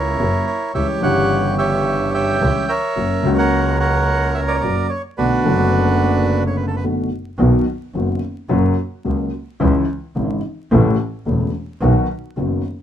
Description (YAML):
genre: tango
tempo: 108 BPM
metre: 4/4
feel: rubato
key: B minor, B major from 7.4 s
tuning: A4 = 440 Hz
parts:
  - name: bandoneon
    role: melody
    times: 0.0-6.8 s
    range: D4 to G5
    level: -19 LUFS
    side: right 3 dB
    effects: none
  - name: dark upright piano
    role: accompaniment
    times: 0.0-12.6 s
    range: E1 to F#4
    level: -19 LUFS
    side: left 2 dB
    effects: none
  - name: clear double bass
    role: bass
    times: 0.0-12.6 s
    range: E1 to C#2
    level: -20 LUFS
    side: right 1 dB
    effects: none
room: moderate studio reverb, RT60 0.7 s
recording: minimal, uncompressed stereo recording, vinyl crackle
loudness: -16 LUFS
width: side -10 dB against mid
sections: 0.0-7.4 A section; 7.4-12.8 B section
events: break 6.8-7.4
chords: 0.0 F#7; 0.8 C#dim; 3.0 F#; 5.2 Bm7; 7.4 B; 8.5 F#; 9.6 C#m; 10.7 A; 11.8 B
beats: 0.21 | 0.76 1.31 1.87 2.42 | 2.97 3.53 4.08 4.63 | 5.18 5.74 6.29 6.84 | 7.40 7.96 8.51 9.06 | 9.62 10.17 10.72 11.27 | 11.82 12.37